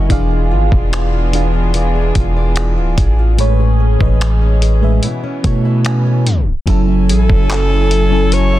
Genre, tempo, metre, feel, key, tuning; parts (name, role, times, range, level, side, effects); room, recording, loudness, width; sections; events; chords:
contemporary R&B; 73 BPM; 4/4; straight; E major; A4 = 440 Hz
mellow FM electric piano; accompaniment; 0.0-8.6 s; A2 to C#6; -19 LUFS; equal; chorus, phaser
warm studio string section; sustained chords; 0.0-8.6 s; E3 to G#5; -24 LUFS; right 2 dB
fingerpicked plugged-in steel-string acoustic guitar; arpeggios; 0.0-8.6 s; B2 to D#5; -24 LUFS; left 3 dB; digital delay
long sustained 808-style bass; bass; 0.0-8.6 s; D1 to B2; -14 LUFS; equal
dusty soul sampler-style drum kit; drums; 0.1-8.5 s; finger snaps, handclaps, hi-hat, kick drum; -17 LUFS; equal; vintage 12-bit sampler grit, soft clipping on snare
breathy alto saxophone; melody; 7.1-8.6 s; A4 to C#5; -18 LUFS; equal
small room ambience; dense, heavily limited modern master, tape stop; -11 LUFS; side -14 dB against mid
0.0-6.7 A section; 6.7-8.6 B section
FM electric piano fill 5.4-6.7; tape stop 6.3-6.7
0.1 E7b9; 3.4 Amaj9; 5.0 B9sus4